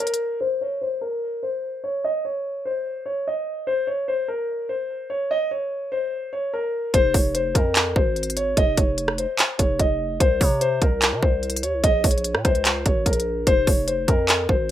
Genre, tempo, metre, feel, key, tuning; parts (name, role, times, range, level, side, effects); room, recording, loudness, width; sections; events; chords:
hip hop, trap; 147 BPM; 4/4; half-time; F minor; A4 = 440 Hz
dark concert grand piano; melody; 0.0-14.7 s; Bb4 to Eb5; -23 LUFS; left 1 dB; low-pass filter
trap drum kit; drums; 0.0-0.2, 6.9-14.6 s; handclaps, hi-hat, kick drum, rim click; -20 LUFS; right 1 dB
growling 808-style bass; bass; 6.9-14.7 s; F1 to C3; -27 LUFS; equal
moderate studio reverb, RT60 0.6 s; rough home demo mix; -20 LUFS; side -12 dB against mid
0.4-6.9 A section; 6.9-14.7 B section
break 0.0-0.4; filter sweep on grand piano 0.4-6.9
0.0 N.C.; 6.9 Fm; 10.2 N.C.; 11.8 Bbm; 13.5 Fm